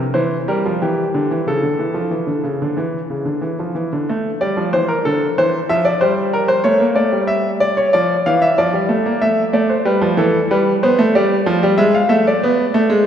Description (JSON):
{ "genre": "classical, baroque-style two-part invention for grand piano", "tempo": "93 BPM", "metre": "4/4", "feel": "straight", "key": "D minor", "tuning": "A4 = 440 Hz", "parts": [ { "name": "warm concert grand piano", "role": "solo", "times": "0.0-13.1 s", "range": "C#3 to F5", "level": "-14 LUFS", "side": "equal", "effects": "none" } ], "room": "wet church reverb, RT60 3.3 s", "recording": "recorded in a church or concert hall", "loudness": "-14 LUFS", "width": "side -9 dB against mid", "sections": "0.0-4.1 A section; 4.1-13.1 B section", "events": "none", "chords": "0.0 Edim; 1.5 A/C#; 4.1 Dm; 5.4 C/E; 6.7 A; 7.9 Dm; 9.2 Am; 10.5 G; 11.8 E/G#", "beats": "0.17 0.82 | 1.47 2.12 2.78 3.43 | 4.08 4.73 5.38 6.02 | 6.66 7.31 7.95 8.59 | 9.23 9.87 10.51 11.15 | 11.79 12.43" }